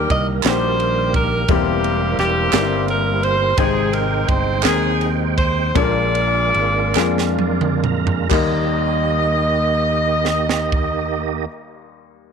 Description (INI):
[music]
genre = slow gospel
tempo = 41-58 BPM (dotted quarters)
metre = 6/8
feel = straight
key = Eb major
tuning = A4 = 439 Hz
[part]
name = clear saxophone section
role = melody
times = 0.0-11.5 s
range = Bb3 to Eb5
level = -20 LUFS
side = equal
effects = none
[part]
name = warm upright piano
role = accompaniment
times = 0.0-12.3 s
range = Eb2 to G5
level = -24 LUFS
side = left 14 dB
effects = none
[part]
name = tonewheel organ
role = sustained chords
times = 0.0-11.5 s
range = Eb3 to Bb5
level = -24 LUFS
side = right 14 dB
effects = slow rotary speaker, overdrive, chorus vibrato
[part]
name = fingered electric bass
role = bass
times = 0.0-11.5 s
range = E1 to F2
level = -22 LUFS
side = equal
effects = none
[part]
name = crisp fusion drum kit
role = drums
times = 0.1-10.9 s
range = crash cymbal, kick drum, ride cymbal, snare drum, toms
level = -22 LUFS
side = right 3 dB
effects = none
[part]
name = group handclap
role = percussion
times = 0.4-8.8 s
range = none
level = -24 LUFS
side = right 17 dB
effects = none
[sound]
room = light reverb, studio ambience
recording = 1960s-style stereo with parts hard left and right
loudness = -16 LUFS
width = side -6 dB against mid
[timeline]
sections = 0.0-8.3 A section; 8.3-12.3 B section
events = slowing down 3.6-8.3; drum fill 7.0-8.3; tonewheel organ fill 7.0-8.3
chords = 0.0 Ebmaj7; 1.5 C7/E; 3.6 Abmaj7; 5.7 Bb7; 8.3 Eb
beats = 0.45 | 1.49 2.53 | 3.58 4.64 | 5.75 6.96 | 8.31 9.76 | 11.21